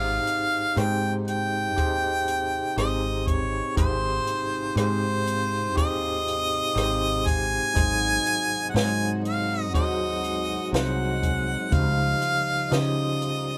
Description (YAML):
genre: acoustic folk-pop ballad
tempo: 60 BPM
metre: 4/4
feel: straight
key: Ab major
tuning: A4 = 440 Hz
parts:
  - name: clear harmonica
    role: melody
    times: 0.0-13.6 s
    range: C5 to Ab5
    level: -28 LUFS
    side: equal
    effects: none
  - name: overdriven tine electric piano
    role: accompaniment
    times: 0.0-13.6 s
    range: Ab1 to C5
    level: -33 LUFS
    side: equal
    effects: fast tremolo
  - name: dark chamber string section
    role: sustained chords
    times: 0.0-13.6 s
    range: C3 to Gb4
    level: -42 LUFS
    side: equal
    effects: none
  - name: vibraphone with hard mallets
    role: arpeggios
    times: 0.0-13.6 s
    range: F3 to Gb4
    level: -38 LUFS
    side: equal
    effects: none
  - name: mellow fretless electric bass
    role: bass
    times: 0.0-13.6 s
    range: Ab1 to Db3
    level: -31 LUFS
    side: equal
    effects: none
  - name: compact cocktail drum kit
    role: drums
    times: 0.3-13.4 s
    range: hi-hat, kick drum, rim click, snare drum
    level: -29 LUFS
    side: equal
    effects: none
room: moderate studio reverb, RT60 0.5 s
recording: band playing live in one room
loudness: -25 LUFS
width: mono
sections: 0.0-13.6 A section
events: none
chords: 0.0 Abmaj7; 7.8 Ab7; 11.7 Dbmaj9#11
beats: 0.77 1.77 2.77 | 3.77 4.77 5.77 6.76 | 7.76 8.75 9.74 10.73 | 11.72 12.72